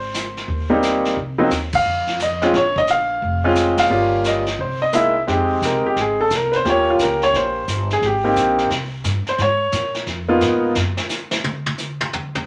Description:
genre	jazz piano trio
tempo	175 BPM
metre	4/4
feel	swing 64% on 8ths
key	F minor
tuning	A4 = 441 Hz
part	clear baby grand piano	melody	0.0-10.7 s	Gb3 to F5	-19 LUFS	equal	none
part	upright bass	bass	0.0-11.0 s	F1 to Bb2	-28 LUFS	equal	none
part	vintage brush drum kit	drums	0.1-12.4 s	brushed snare drum, hi-hat, kick drum, ride cymbal, snare drum, toms	-28 LUFS	equal	none
room	wet studio ambience, RT60 0.5 s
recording	none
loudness	-19 LUFS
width	mono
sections	0.0-5.3 A section; 5.3-12.5 B section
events	band accent 1.7, 3.7; grand piano solo 5.3-12.5; drum solo 10.8-12.5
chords	0.0 Abmaj9; 1.2 Cm; 1.8 F5; 2.5 Bbm9; 3.9 Gm7b5; 4.6 C7alt; 5.3 Fm9; 6.6 Eb7; 8.0 Abmaj7; 9.4 Db13; 10.8 N.C.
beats	0.13 0.48 0.82 | 1.16 1.51 1.85 2.19 | 2.54 2.88 3.22 3.56 | 3.91 4.25 4.59 4.93 | 5.28 5.62 5.96 6.30 | 6.65 6.99 7.33 7.67 | 8.02 8.36 8.70 9.04 | 9.38 9.73 10.07 10.41 | 10.75 11.09 11.43 11.78 | 12.12

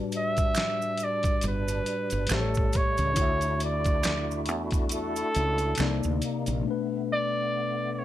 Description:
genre	R&B, neo-soul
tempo	69 BPM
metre	4/4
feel	swing 57% on 16ths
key	D major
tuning	A4 = 440 Hz
part	mellow tine electric piano	accompaniment	0.0-8.0 s	A2 to E5	-32 LUFS	moving between left 9 dB and left 3 dB	auto-pan
part	tonewheel organ	sustained chords	0.0-8.0 s	C3 to F#4	-36 LUFS	right 1 dB	overdrive, chorus vibrato, slow rotary speaker
part	boom bap sampler-style drum kit	drums	0.1-6.6 s	hi-hat, kick drum, snare drum	-29 LUFS	equal	none
part	maracas and finger snaps	percussion	0.1-6.6 s	none	-36 LUFS	right 7 dB	none
part	warm flugelhorn	melody	0.2-8.0 s	A4 to E5	-29 LUFS	right 1 dB	none
part	woody fretless electric bass	bass	1.4-6.6 s	G1 to E2	-30 LUFS	right 1 dB	none
room	light reverb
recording	none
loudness	-25 LUFS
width	side -13 dB against mid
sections	0.0-8.0 A section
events	silent gap 6.7-8.0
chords	0.0 A13sus4; 2.3 A7; 3.2 Dmaj9; 5.8 Cm9; 6.7 Bm7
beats	0.57 1.44 2.31 | 3.18 4.05 4.92 5.79 | 6.66 7.53

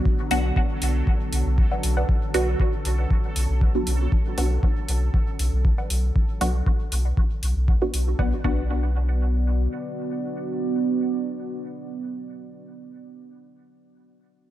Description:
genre	dub techno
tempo	118 BPM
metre	4/4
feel	swing 53% on 16ths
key	B minor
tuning	A4 = 443 Hz
part	deep dark ambient pad	sustained chords	0.0-12.6 s	B3 to D5	-30 LUFS	right 2 dB	chorus, built-in reverb, vintage 12-bit sampler grit, sidechain pumping
part	filtered dub chord stab	stabs	0.0-12.9 s	F#3 to F#4	-28 LUFS	right 1 dB	phaser, sidechain pumping, dub echo
part	bubbling stepped-filter texture	texture	0.0-8.2 s	F#3 to A4	-38 LUFS	equal	chorus, built-in reverb, sidechain pumping
part	electronic kick drum	drums	0.1-8.6 s	none	-22 LUFS	equal	none
part	soft dub sub bass	bass	0.3-9.7 s	B1	-22 LUFS	equal	sidechain pumping
part	electronic hi-hat	drums	0.3-8.0 s	none	-32 LUFS	left 1 dB	none
part	wavetable chord stab	riff	1.7-2.5, 5.8-12.9 s	B4 to F#5	-35 LUFS	equal	phaser, sidechain pumping, dub echo
room	light reverb, digital ambience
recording	dark, warm production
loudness	-21 LUFS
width	side -13 dB against mid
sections	0.0-8.2 A section; 8.2-12.3 B section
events	filter sweep on synth stab 0.0-8.2; filter sweep on ambient pad 0.0-8.2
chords	0.0 Bm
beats	| 0.05 0.56 1.07 1.58 | 2.09 2.60 3.10 3.61 | 4.12 4.63 5.14 5.65 | 6.16 6.66 7.17 7.68 | 8.19 8.70 9.21 9.71 | 10.22 10.73 11.24 11.75

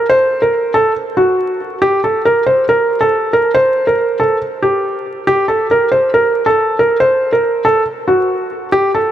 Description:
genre	hip hop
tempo	139 BPM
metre	4/4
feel	half-time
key	unclear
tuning	A4 = 440 Hz
part	felt-muted upright piano	solo	0.0-9.1 s	F#4 to C5	-11 LUFS	right 1 dB	low-pass filter
room	moderate huge ambient reverb, RT60 6.1 s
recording	vinyl crackle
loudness	-11 LUFS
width	side -11 dB against mid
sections	0.0-8.7 A section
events	none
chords	none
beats	| 0.09 0.52 0.96 1.39 | 1.82 2.25 2.68 3.11 | 3.55 3.98 4.41 4.84 | 5.27 5.70 6.13 6.57 | 7.00 7.43 7.86 8.29 | 8.72

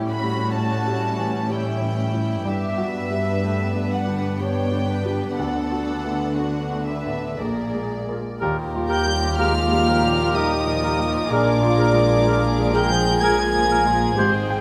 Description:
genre	cinematic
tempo	62 BPM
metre	3/4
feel	rubato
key	D major, Eb major from 8.4 s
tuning	A4 = 440 Hz
part	warm symphonic violin section	second line	0.0-14.6 s	E4 to C#5	-32 LUFS	equal	none
part	clear grand piano	accompaniment	0.0-14.6 s	Bb1 to G5	-30 LUFS	equal	none
part	dark symphonic viola section	accompaniment	0.0-14.6 s	F3 to G5	-33 LUFS	equal	none
part	concert harp	arpeggios	0.0-14.6 s	G2 to F#5	-34 LUFS	equal	none
part	warm chamber cello section	bass	0.0-14.6 s	Eb2 to D3	-29 LUFS	equal	none
part	warm symphonic violin section	melody	0.1-14.2 s	D5 to Ab6	-30 LUFS	equal	none
part	mellow clarinet	second line	8.4-14.3 s	G4 to Ab4	-32 LUFS	equal	none
part	warm cor anglais	second line	8.4-14.3 s	Bb4 to C5	-30 LUFS	equal	none
part	warm symphonic double bass section	bass	8.4-14.6 s	Ab1 to Eb2	-28 LUFS	equal	none
part	mellow hollow concert flute	second line	8.9-14.2 s	D5 to Ab5	-28 LUFS	equal	none
part	mellow French horn section	sustained chords	8.9-14.2 s	D4 to Ab4	-27 LUFS	equal	none
room	moderate scoring stage reverb, RT60 1.8 s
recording	none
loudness	-21 LUFS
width	mono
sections	0.0-8.4 A section; 8.4-14.6 A section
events	none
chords	0.0 A7; 2.5 Gmaj7; 5.4 D6; 7.4 Bb7; 8.4 Ebadd9; 11.3 Bb7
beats	0.56 1.51 | 2.47 3.44 4.40 | 5.38 6.37 7.39 | 8.41 9.39 10.35 | 11.31 12.27 13.22 | 14.17

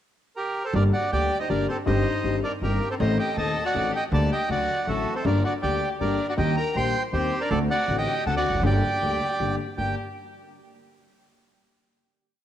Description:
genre	tango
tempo	160 BPM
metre	3/4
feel	rubato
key	G harmonic minor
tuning	A4 = 438 Hz
part	bandoneon	melody	0.4-10.0 s	F#4 to C6	-26 LUFS	right 2 dB	cassette tape
part	upright bass	bass	0.7-9.9 s	E1 to Eb2	-27 LUFS	right 2 dB	none
part	warm violin	second line	0.8-10.0 s	A3 to C5	-32 LUFS	left 6 dB	cassette tape
part	warm concert grand piano	accompaniment	0.8-9.9 s	Eb1 to A4	-28 LUFS	left 6 dB	cassette tape
room	moderate lush hall reverb, RT60 2.5 s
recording	home recording on cassette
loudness	-22 LUFS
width	side -11 dB against mid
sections	0.0-0.7 pickup bar; 0.7-9.8 A section; 9.8-10.9 final chord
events	none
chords	0.0 Gmadd9; 0.7 Gm; 1.9 Cm/G; 3.0 Adim; 4.1 Gm/D; 4.5 D; 5.3 Gm; 6.4 Eb; 7.5 D7; 8.6 Gm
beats	0.36 | 0.74 1.12 1.50 | 1.87 2.25 2.62 | 3.00 3.37 3.75 | 4.12 4.50 4.88 | 5.26 5.63 6.01 | 6.39 6.76 7.14 | 7.51 7.89 8.26 | 8.64 9.02 9.40 | 9.78

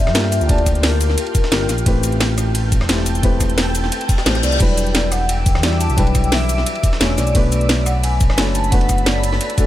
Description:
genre	liquid drum and bass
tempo	175 BPM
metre	4/4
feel	straight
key	E minor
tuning	A4 = 440 Hz
part	vibraphone with soft mallets	melody	0.0-1.6, 4.4-9.7 s	Bb4 to A5	-24 LUFS	left 2 dB	dub echo
part	felt-muted upright piano	accompaniment	0.0-9.7 s	F#3 to A5	-23 LUFS	left 2 dB	ping-pong delay
part	shimmering ambient pad	sustained chords	0.0-9.7 s	E3 to D6	-27 LUFS	right 1 dB	chorus, built-in reverb, sidechain pumping
part	smooth gliding synth bass	bass	0.0-9.4 s	E1 to G2	-19 LUFS	equal	none
part	breakbeat sampler-style drum kit	drums	0.1-9.7 s	hi-hat, ride cymbal, snare drum	-27 LUFS	right 2 dB	high-pass filter on snare, high-pass filter on cymbals, high-pass filter on hats
part	drum and bass drum kit	drums	0.1-9.7 s	crash cymbal, hi-hat, rim click, shaker, snare drum	-21 LUFS	equal	none
part	electronic kick drum	drums	0.5-9.7 s	none	-16 LUFS	equal	none
part	reverse cymbal	sound effects	4.1-4.6 s	none	-28 LUFS	left 6 dB	none
room	little or no reverb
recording	none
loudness	-14 LUFS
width	side -14 dB against mid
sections	0.0-9.7 A section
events	reverse cymbal 4.1-4.6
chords	0.0 Gm7; 1.9 Am7; 4.6 Em7; 7.2 Bm7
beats	0.15 | 0.49 0.83 1.18 1.52 | 1.86 2.21 2.55 2.89 | 3.23 3.58 3.92 4.26 | 4.61 4.95 5.29 5.63 | 5.98 6.32 6.66 7.01 | 7.35 7.69 8.04 8.38 | 8.72 9.06 9.41

